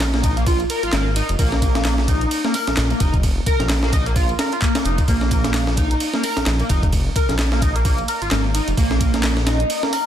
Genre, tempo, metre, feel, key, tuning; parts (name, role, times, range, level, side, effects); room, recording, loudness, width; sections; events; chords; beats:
breakbeat, breaks; 130 BPM; 4/4; swing 57% on 16ths; A4 = 435 Hz
detuned saw bass; bass; 0.0-9.6 s; F1 to Bb1; -21 LUFS; equal; tube saturation
breakbeat sampler-style drum kit; drums; 0.0-10.1 s; hi-hat, kick drum, ride cymbal, snare drum; -20 LUFS; equal
punchy analog drum machine; drums; 0.0-10.0 s; handclaps, hi-hat; -30 LUFS; equal
overdriven synth lead; riff; 0.1-10.0 s; Bb3 to Bb4; -23 LUFS; equal; distortion, phaser, ensemble chorus, tape echo
swell; sound effects; 4.3-5.1 s; -31 LUFS; left 2 dB
light reverb; dense, heavily limited modern master; -16 LUFS; side -10 dB against mid
0.0-10.1 A section
swell 4.3-5.1
0.0 Bb5
0.01 0.47 0.93 | 1.39 1.85 2.31 2.77 | 3.24 3.70 4.16 4.62 | 5.08 5.54 6.01 6.47 | 6.93 7.39 7.85 8.31 | 8.78 9.24 9.70